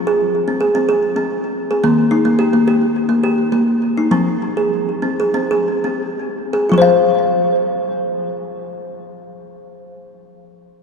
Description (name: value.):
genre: world meditative, meditative tuned percussion.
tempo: 82-110 BPM.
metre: 4/4.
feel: straight.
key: F minor.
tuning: A4 = 441 Hz.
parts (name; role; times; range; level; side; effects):
kalimba; solo; 0.0-10.2 s; Eb3 to F5; -14 LUFS; equal; ping-pong delay.
room: wet cathedral reverb, RT60 6.0 s.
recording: in a vast, echoing space.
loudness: -14 LUFS.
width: side -5 dB against mid.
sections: 0.0-6.7 A section; 6.7-9.6 B section.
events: slowing down 1.8-6.7.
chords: 0.0 Fm; 1.8 Eb; 4.1 Fm.